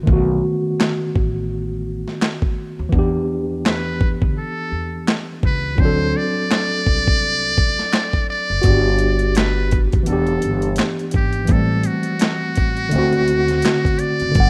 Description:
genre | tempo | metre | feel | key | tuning
lo-fi hip hop | 84 BPM | 4/4 | swing 58% on 16ths | unclear | A4 = 440 Hz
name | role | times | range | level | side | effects
tine electric piano | accompaniment | 0.0-14.5 s | D3 to F#5 | -23 LUFS | equal | overdrive, cassette tape
upright bass | bass | 0.0-14.5 s | E1 to E2 | -25 LUFS | equal | none
dusty soul sampler-style drum kit | drums | 0.1-14.5 s | handclaps, hi-hat, kick drum, snare drum | -21 LUFS | equal | overdrive
trumpet with metal mute | melody | 3.7-14.5 s | F#4 to D5 | -25 LUFS | equal | none
room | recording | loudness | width
studio ambience | rough home demo mix | -19 LUFS | mono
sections
0.0-14.5 A section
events
break 0.0-8.6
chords
0.1 B7; 2.9 Em7; 5.8 D7; 8.6 Gmaj7; 10.1 Em7; 11.5 Am7; 12.9 D7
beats
| 0.07 0.78 1.50 2.21 | 2.93 3.64 4.36 5.07 | 5.78 6.50 7.21 7.93 | 8.64 9.36 10.07 10.78 | 11.50 12.21 12.93 13.64 | 14.36

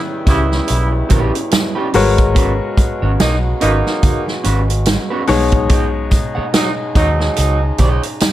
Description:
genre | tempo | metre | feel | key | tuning
lush 1970s-style soul | 72 BPM | 4/4 | swing 58% on 16ths | B major | A4 = 436 Hz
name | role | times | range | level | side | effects
clear grand piano | accompaniment | 0.0-8.3 s | B2 to E5 | -21 LUFS | left 5 dB | none
warm French horn section | sustained chords | 0.0-8.3 s | B2 to F#4 | -25 LUFS | equal | none
electric guitar through a small old amp | riff | 0.3-8.3 s | C#4 to F#5 | -24 LUFS | right 3 dB | tube saturation
mellow horn section | stabs | 0.3-7.6 s | G#2 to E4 | -19 LUFS | right 2 dB | none
vintage muted fingered electric bass | bass | 0.3-8.0 s | G#1 to D#2 | -17 LUFS | equal | none
vintage drum kit | drums | 0.3-8.3 s | hi-hat, kick drum, snare drum | -17 LUFS | equal | none
tambourine | percussion | 0.3-8.3 s | none | -31 LUFS | left 5 dB | none
congas | percussion | 1.1-8.3 s | none | -24 LUFS | right 3 dB | none
room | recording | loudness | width
little or no reverb | none | -13 LUFS | side -14 dB against mid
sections
0.0-8.3 A section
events
none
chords
0.0 D#7b9b13; 1.9 G#m11; 5.3 B69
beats
0.69 1.52 | 2.36 3.20 4.03 4.87 | 5.70 6.54 7.38 8.21

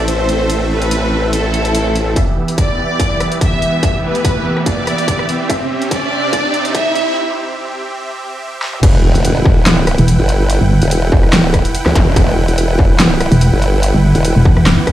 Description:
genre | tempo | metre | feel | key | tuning
heavy wobble dubstep | 144 BPM | 4/4 | swing 54% on 16ths, half-time | E minor | A4 = 440 Hz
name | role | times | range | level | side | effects
supersaw chords | sustained chords | 0.0-14.9 s | C3 to G5 | -20 LUFS | right 1 dB | sidechain pumping, low-pass filter
formant-sweep wobble bass | bass | 0.0-2.1, 8.8-14.3 s | E1 to D2 | -15 LUFS | equal | chorus, overdrive
rich studio violin section | melody | 0.1-7.2 s | A4 to E5 | -19 LUFS | equal | dub echo
big-room dance drum kit | drums | 0.1-14.9 s | crash cymbal, handclaps, hi-hat, rim click, snare drum, toms | -17 LUFS | equal | overdrive, high-pass filter on hats, small room ambience, high-pass filter on snare, high-pass filter on toms, high-pass filter on cymbals
swell, riser, impact and zap | sound effects | 1.5-12.1 s | none | -21 LUFS | equal | none
electronic kick drum | drums | 2.2-14.9 s | none | -15 LUFS | equal | distortion, small room ambience
pulsing pluck wobble bass | bass | 10.0-10.8, 13.3-14.8 s | E1 to G1 | -9 LUFS | equal | chorus, overdrive
room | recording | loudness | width
light reverb | played on a big sound system in a bare room, stone room reverb, high-pass filter | -11 LUFS | side -13 dB against mid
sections
0.0-2.2 A section; 2.2-8.8 B section; 8.8-14.9 C section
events
swell 1.5-2.2; build-up 2.2-8.8; riser 2.2-7.2; filter sweep on supersaw synth 2.2-8.8; filter sweep 2.2-8.8; drum fill 5.5-7.2, 8.6; break 7.2-8.8; drop 8.8-14.9; impact 8.8-10.5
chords
0.0 Am; 2.2 Em; 5.5 C; 8.8 Emadd9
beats
0.08 | 0.50 0.91 1.33 1.75 | 2.16 2.58 3.00 3.41 | 3.83 4.25 4.66 5.08 | 5.50 5.91 6.33 6.75 | 7.16 7.58 8.00 8.41 | 8.83 9.25 9.66 10.08 | 10.50 10.91 11.33 11.75 | 12.16 12.58 13.00 13.41 | 13.83 14.25 14.66

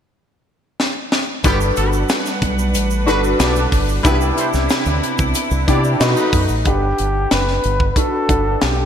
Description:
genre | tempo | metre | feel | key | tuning
polished 1980s jazz-funk pop | 92 BPM | 4/4 | straight | G major | A4 = 442 Hz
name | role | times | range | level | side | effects
tight funk drum kit | drums | 0.8-8.8 s | hi-hat, kick drum, snare drum | -19 LUFS | equal | gated reverb
warm horn section | second line | 1.4-6.4 s | D3 to D5 | -24 LUFS | right 1 dB | none
warm concert grand piano | accompaniment | 1.4-8.9 s | D4 to F#5 | -20 LUFS | left 1 dB | ensemble chorus
dark studio string section | sustained chords | 1.4-6.7 s | C3 to F#5 | -24 LUFS | equal | none
fingered electric bass with an envelope filter | bass | 1.4-8.9 s | F#1 to C3 | -19 LUFS | equal | none
tube shaker | percussion | 1.4-6.6 s | none | -33 LUFS | right 10 dB | none
breathy flugelhorn | melody | 6.7-8.9 s | G4 to B4 | -20 LUFS | equal | none
room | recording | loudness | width
moderate lush hall reverb, RT60 2.0 s, small room ambience | bright 1980s-style digital production | -15 LUFS | side -8 dB against mid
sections
0.0-1.4 A section; 1.4-6.7 B section; 6.7-8.9 C section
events
drum fill 0.8-1.4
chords
0.0 N.C.; 1.4 Gmaj7; 4.1 Cmaj9; 6.0 B7; 6.7 Gmaj7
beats
0.14 0.79 | 1.44 2.10 2.75 3.40 | 4.05 4.71 5.36 6.01 | 6.66 7.31 7.97 8.62

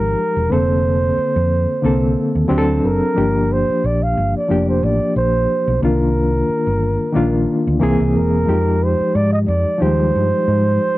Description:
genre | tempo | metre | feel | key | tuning
lush 1970s-style soul | 90 BPM | 4/4 | swing 54% on 16ths | Bb major | A4 = 438 Hz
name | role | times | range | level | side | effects
breathy flugelhorn | melody | 0.0-11.0 s | Bb4 to F5 | -20 LUFS | right 2 dB | none
overdriven reed electric piano | accompaniment | 0.0-11.0 s | D3 to A4 | -18 LUFS | left 1 dB | fast tremolo
hollow-body short-scale fingered electric bass | bass | 0.0-10.8 s | E1 to Ab2 | -19 LUFS | equal | none
room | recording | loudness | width
light reverb | dry, close 1970s-style studio recording | -14 LUFS | side -17 dB against mid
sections
0.0-11.0 A section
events
none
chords
0.0 Fm9; 0.5 Bbmaj9/F; 2.5 D7; 3.2 Gm7; 5.8 Cm11; 7.8 Caug7; 8.5 Fm9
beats
| 0.51 1.17 1.83 2.50 | 3.16 3.83 4.49 5.16 | 5.82 6.48 7.15 7.81 | 8.48 9.14 9.81 10.47

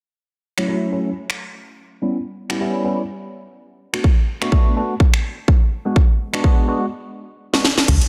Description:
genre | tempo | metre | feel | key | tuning
filtered disco house | 125 BPM | 4/4 | swing 56% on 16ths | unclear | A4 = 439 Hz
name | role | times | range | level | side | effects
barky tine electric piano | accompaniment | 0.6-7.6 s | F#3 to F#4 | -25 LUFS | equal | phaser, sidechain pumping, low-pass filter
house drum kit | drums | 0.6-8.1 s | crash cymbal, finger snaps, hi-hat, snare drum | -24 LUFS | equal | overdrive, sidechain pumping on hats, sidechain pumping on cymbals
electronic kick drum | drums | 4.0-8.0 s | none | -17 LUFS | equal | overdrive
plucky analog bass | bass | 7.9-8.0 s | D2 | -18 LUFS | equal | sidechain pumping, low-pass filter
room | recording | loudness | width
light reverb, digital ambience | dense, heavily limited modern master | -19 LUFS | mono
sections
0.2-7.9 A section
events
filter sweep on tine electric piano 0.2-7.9; break 6.9-7.9; drum fill 7.5-7.9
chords
0.2 F#m7; 1.9 G6; 3.8 Bm7/A; 5.7 G#m7b5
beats
| 0.20 0.68 1.16 1.64 | 2.12 2.60 3.08 3.56 | 4.04 4.52 5.00 5.48 | 5.96 6.44 6.92 7.40 | 7.88

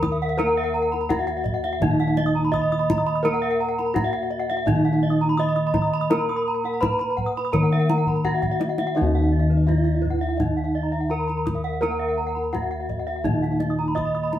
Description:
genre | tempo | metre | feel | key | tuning
Balinese gamelan | 84 BPM | 4/4 | straight | Eb pelog | A4 = 439 Hz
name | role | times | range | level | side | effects
gamelan-type bronze metallophone | melody | 0.0-14.4 s | Eb4 to Eb5 | -25 LUFS | equal | none
gamelan-type bronze metallophone | accompaniment | 0.0-14.4 s | Eb3 to Bb3 | -28 LUFS | right 1 dB | none
gamelan-type bronze metallophone | arpeggios | 0.0-14.4 s | Cb5 to Eb6 | -29 LUFS | left 2 dB | none
gamelan-type bronze metallophone | arpeggios | 0.0-14.3 s | Cb5 to Eb6 | -30 LUFS | right 3 dB | none
gamelan-type bossed gongs | bass | 0.0-14.4 s | Eb2 to Bb4 | -26 LUFS | left 1 dB | none
kendang | percussion | 0.0-14.4 s | none | -27 LUFS | left 1 dB | none
room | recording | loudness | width
moderate studio reverb, RT60 0.6 s | band playing live in one room | -20 LUFS | side -11 dB against mid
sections
0.0-14.4 A section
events
drum fill 8.1-9.0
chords
none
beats
| 0.39 1.10 1.81 2.53 | 3.24 3.96 4.67 5.39 | 6.10 6.82 7.53 8.24 | 8.96 9.67 10.39 11.10 | 11.81 12.53 13.24 13.96

